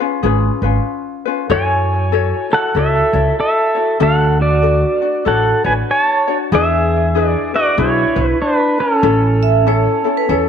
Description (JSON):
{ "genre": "Hawaiian", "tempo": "95 BPM", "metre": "4/4", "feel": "swing 62% on 8ths", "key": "unclear", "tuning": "A4 = 442 Hz", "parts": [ { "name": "ukulele", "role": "accompaniment", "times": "0.0-10.5 s", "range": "C#4 to C#5", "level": "-20 LUFS", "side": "left 11 dB", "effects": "none" }, { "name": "upright bass", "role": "bass", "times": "0.2-10.5 s", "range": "G#1 to F#2", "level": "-17 LUFS", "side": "right 1 dB", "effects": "none" }, { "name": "pedal steel guitar", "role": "melody", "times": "1.5-10.5 s", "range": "C#4 to A5", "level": "-15 LUFS", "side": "right 1 dB", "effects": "tape echo" }, { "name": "vibraphone with hard mallets", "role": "second line", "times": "9.4-10.5 s", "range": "B4 to E5", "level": "-18 LUFS", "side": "right 10 dB", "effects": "none" } ], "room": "moderate spring reverb, RT60 1.3 s, small room reverb", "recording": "1960s-style stereo with parts hard left and right", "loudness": "-13 LUFS", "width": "side -7 dB against mid", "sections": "0.0-10.5 A section", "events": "none", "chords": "0.0 C#7; 1.5 F#m7; 4.0 Dmaj7; 6.5 E7; 9.0 A", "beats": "0.24 0.86 | 1.49 2.12 2.75 3.38 | 4.01 4.63 5.26 5.89 | 6.52 7.15 7.78 8.41 | 9.04 9.66 10.29" }